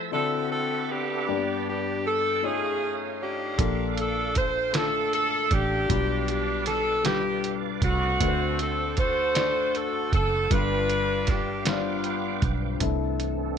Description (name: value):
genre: slow gospel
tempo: 52 BPM (dotted quarters)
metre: 6/8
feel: straight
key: unclear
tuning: A4 = 436 Hz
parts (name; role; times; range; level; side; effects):
- warm grand piano; accompaniment; 0.0-13.6 s; G2 to D5; -30 LUFS; left 13 dB; none
- bright tonewheel organ; sustained chords; 0.0-13.6 s; E3 to E6; -36 LUFS; right 16 dB; slow rotary speaker, chorus vibrato
- bright saxophone section; melody; 0.1-12.8 s; A3 to C5; -26 LUFS; equal; slapback echo
- fingered electric bass; bass; 3.6-13.6 s; F#1 to D2; -30 LUFS; right 2 dB; none
- lo-fi sampler-style drum kit; drums; 3.6-13.4 s; hi-hat, kick drum, snare drum; -27 LUFS; right 2 dB; none
room: light reverb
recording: 1960s-style stereo with parts hard left and right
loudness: -23 LUFS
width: side -7 dB against mid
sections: 0.0-12.8 A section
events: none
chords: 0.1 D9; 1.3 G; 2.4 F7alt; 3.6 Bbmaj7; 5.9 G7/B; 8.2 D7; 10.5 G7; 12.8 C69